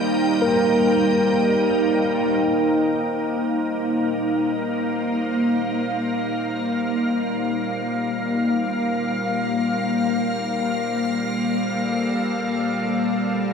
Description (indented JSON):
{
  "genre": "ambient",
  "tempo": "free time",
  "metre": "none",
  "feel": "none",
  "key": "unclear",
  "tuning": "A4 = 443 Hz",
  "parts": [
    { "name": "soft additive organ-like pad", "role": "sustained chords", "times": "0.0-13.5 s", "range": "Bb3 to G5", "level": "-21 LUFS", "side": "left 1 dB", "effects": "ensemble chorus, built-in reverb" },
    { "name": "tine electric piano", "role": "arpeggios", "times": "0.0-2.9 s", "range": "Bb4", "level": "-24 LUFS", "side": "right 1 dB", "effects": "medium stereo tremolo, ping-pong delay, shimmer reverb" },
    { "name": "bowed-like drone", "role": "drone", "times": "0.0-13.5 s", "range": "G3", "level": "-29 LUFS", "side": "equal", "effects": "built-in reverb" }
  ],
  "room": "wet concert hall reverb, RT60 2.3 s",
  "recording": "cassette tape",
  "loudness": "-20 LUFS",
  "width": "side -6 dB against mid",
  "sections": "0.0-2.4 A section; 2.4-13.5 B section",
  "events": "fade-in on synth drone 2.4-13.5",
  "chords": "0.0 Cm7; 2.4 F7sus4; 10.6 Bbmaj7",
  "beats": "free time"
}